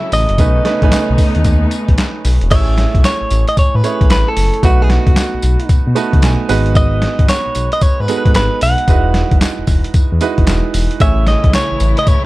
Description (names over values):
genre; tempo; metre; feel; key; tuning
R&B, new jack swing; 113 BPM; 4/4; swing 64% on 16ths; unclear; A4 = 439 Hz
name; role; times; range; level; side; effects
direct-recorded clean electric guitar; melody; 0.0-12.2 s; F#4 to F#5; -18 LUFS; equal; tape echo
clear baby grand piano; accompaniment; 0.0-12.3 s; F#3 to A5; -20 LUFS; right 6 dB; none
warm studio string section; sustained chords; 0.0-2.5, 11.0-12.3 s; C#3 to E4; -23 LUFS; left 2 dB; none
smooth gliding synth bass; bass; 0.1-12.1 s; E1 to B2; -15 LUFS; equal; none
boom bap sampler-style drum kit; drums; 0.1-12.2 s; crash cymbal, handclaps, hi-hat, kick drum, snare drum, tambourine; -14 LUFS; equal; none
room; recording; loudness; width
little or no reverb; dark, warm production, faint mains hum; -11 LUFS; side -18 dB against mid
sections
0.0-2.5 A section; 2.5-12.3 B section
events
grand piano fill 5.7-6.8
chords
0.4 B9; 2.5 Amaj7; 4.6 B7; 6.5 G#m7; 8.9 Emaj9; 11.0 Amaj7